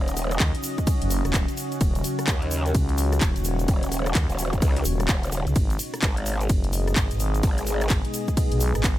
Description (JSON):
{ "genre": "bass house", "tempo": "128 BPM", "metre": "4/4", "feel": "swing 62% on 16ths", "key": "Eb minor", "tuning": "A4 = 440 Hz", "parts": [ { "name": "dark analog pad", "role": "sustained chords", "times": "0.1-9.0 s", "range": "Cb4 to Eb5", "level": "-33 LUFS", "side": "equal", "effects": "chorus, phaser, sidechain pumping" }, { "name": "growl bass", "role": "bass", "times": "0.0-7.9 s", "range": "Eb1 to Eb2", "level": "-26 LUFS", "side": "equal", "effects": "chorus, overdrive, sidechain pumping" }, { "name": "deep dark ambient pad", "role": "texture", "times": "0.0-9.0 s", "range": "Cb4 to Eb5", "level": "-32 LUFS", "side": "left 2 dB", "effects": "chorus, built-in reverb, sidechain pumping" }, { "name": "house drum kit", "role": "drums", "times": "0.1-9.0 s", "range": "handclaps, hi-hat, ride cymbal, rim click", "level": "-30 LUFS", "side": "equal", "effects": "overdrive" }, { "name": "egg shaker", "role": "percussion", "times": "0.1-9.0 s", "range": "none", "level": "-36 LUFS", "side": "right 3 dB", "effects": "none" }, { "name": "growling FM bass", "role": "bass", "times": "0.4-9.0 s", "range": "Eb1 to Eb2", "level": "-25 LUFS", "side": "equal", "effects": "tube saturation, sidechain pumping" }, { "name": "electronic kick drum", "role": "drums", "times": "0.4-9.0 s", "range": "none", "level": "-23 LUFS", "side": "equal", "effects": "overdrive" } ], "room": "digital ambience", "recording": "none", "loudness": "-21 LUFS", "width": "side -14 dB against mid", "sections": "0.0-9.0 A section", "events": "none", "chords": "0.0 Ebm7; 5.6 Abm" }